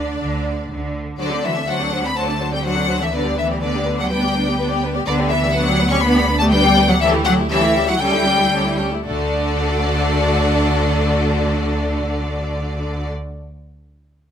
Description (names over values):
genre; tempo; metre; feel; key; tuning
quick classical-period movement for string orchestra; 111-126 BPM; 4/4; straight; D major; A4 = 440 Hz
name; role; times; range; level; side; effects
clear studio violin section; melody; 0.0-13.1 s; D5 to C#6; -21 LUFS; left 4 dB; none
rich studio violin section; second line; 0.0-13.1 s; E4 to D5; -24 LUFS; left 4 dB; none
rich studio viola section; accompaniment; 0.0-13.1 s; D3 to E4; -23 LUFS; right 1 dB; none
rich studio cello section; bass; 0.0-13.1 s; D3 to C#4; -23 LUFS; right 1 dB; none
warm studio double bass section; bass; 0.0-13.1 s; D2; -23 LUFS; right 1 dB; none
room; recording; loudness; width
light reverb; close, detailed microphones; -16 LUFS; side -8 dB against mid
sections
0.0-1.2 A section; 1.2-9.1 B section; 9.1-13.2 C section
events
slowing down 4.1-9.1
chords
0.0 N.C.; 1.2 D7; 3.1 G/D; 7.0 A7/D; 9.1 D